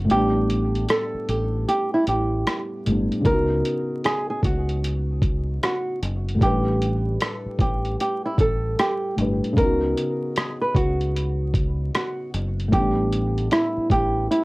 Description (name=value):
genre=lo-fi hip hop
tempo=76 BPM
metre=4/4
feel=swing 63% on 16ths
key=unclear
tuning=A4 = 440 Hz
part: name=felt-muted upright piano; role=accompaniment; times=0.0-14.4 s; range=A2 to B4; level=-27 LUFS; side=left 1 dB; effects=none
part: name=deep dub fingered electric bass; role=bass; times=0.0-14.3 s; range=Gb1 to Db2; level=-25 LUFS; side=equal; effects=none
part: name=nylon-string guitar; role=melody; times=0.1-14.4 s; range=E4 to Cb5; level=-24 LUFS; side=right 1 dB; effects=none
part: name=lo-fi sampler-style drum kit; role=drums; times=0.1-14.4 s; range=hi-hat, kick drum, rim click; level=-24 LUFS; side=equal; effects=none
room=light reverb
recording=worn, warbling old tape, cassette tape, vinyl crackle, warbly pitch drift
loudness=-20 LUFS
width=side -22 dB against mid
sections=0.0-14.4 A section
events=break 0.0-3.3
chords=0.1 A9sus4; 3.3 Db9sus4; 6.4 A9sus4; 9.6 Db9sus4; 12.7 A9sus4